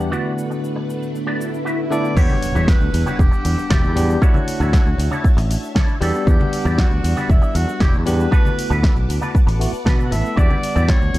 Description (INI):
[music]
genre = nu-disco, nu disco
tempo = 117 BPM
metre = 4/4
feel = straight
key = E dorian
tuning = A4 = 438 Hz
[part]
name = bell-like tine electric piano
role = accompaniment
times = 0.0-11.2 s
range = D3 to F#5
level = -25 LUFS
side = equal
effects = medium stereo tremolo, sidechain pumping
[part]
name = string machine, full ensemble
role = sustained chords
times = 0.0-11.2 s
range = A3 to E6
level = -31 LUFS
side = equal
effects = ensemble chorus, sidechain pumping
[part]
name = house drum kit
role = drums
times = 0.0-11.2 s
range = crash cymbal, hi-hat, shaker, snare drum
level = -28 LUFS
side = equal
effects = none
[part]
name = electric guitar with an envelope filter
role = riff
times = 0.1-11.0 s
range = D4 to E5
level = -29 LUFS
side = right 2 dB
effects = ensemble chorus
[part]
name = swell and impact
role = sound effects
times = 1.3-4.2 s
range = none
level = -28 LUFS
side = left 1 dB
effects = none
[part]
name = clear tenor saxophone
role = melody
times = 1.9-11.2 s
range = E4 to E5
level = -27 LUFS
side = right 1 dB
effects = analog delay
[part]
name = modern bright fingered electric bass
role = bass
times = 2.2-11.2 s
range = E1 to B2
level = -19 LUFS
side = equal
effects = none
[part]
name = electronic kick drum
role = drums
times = 2.2-11.0 s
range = none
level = -16 LUFS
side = equal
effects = none
[part]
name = cabasa, congas and bongos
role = percussion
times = 2.2-11.1 s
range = none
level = -28 LUFS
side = left 2 dB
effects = none
[sound]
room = digital ambience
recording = none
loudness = -15 LUFS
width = side -16 dB against mid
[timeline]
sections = 0.0-2.2 A section; 2.2-11.2 B section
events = swell 1.3-2.2; drop 2.2-11.2; impact 2.2-4.2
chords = 0.1 D6; 2.2 Em9; 4.2 Dmaj9; 6.0 Em9; 8.3 D6; 10.4 Em9